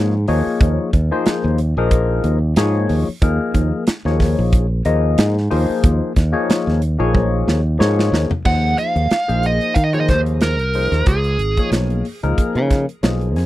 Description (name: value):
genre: electric jazz fusion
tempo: 92 BPM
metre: 4/4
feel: swing 55% on 16ths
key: unclear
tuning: A4 = 439 Hz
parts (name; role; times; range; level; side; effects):
- barky tine electric piano; accompaniment; 0.0-13.5 s; F3 to Ab5; -21 LUFS; left 4 dB; overdrive, phaser
- fingered electric bass; bass; 0.0-13.5 s; Ab1 to Eb3; -18 LUFS; equal; none
- modern studio drum kit; drums; 0.3-13.5 s; crash cymbal, hi-hat, kick drum, snare drum, toms; -17 LUFS; right 1 dB; none
- dark smooth lead guitar; melody; 8.5-11.7 s; Ab4 to Gb5; -20 LUFS; right 2 dB; overdrive
room: little or no reverb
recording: dry, close 1970s-style studio recording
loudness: -15 LUFS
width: side -15 dB against mid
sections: 0.0-8.4 A section; 8.4-13.5 B section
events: drum fill 7.1-8.4; tine electric piano fill 12.7-13.5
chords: 0.0 Ebsus2; 11.1 Db7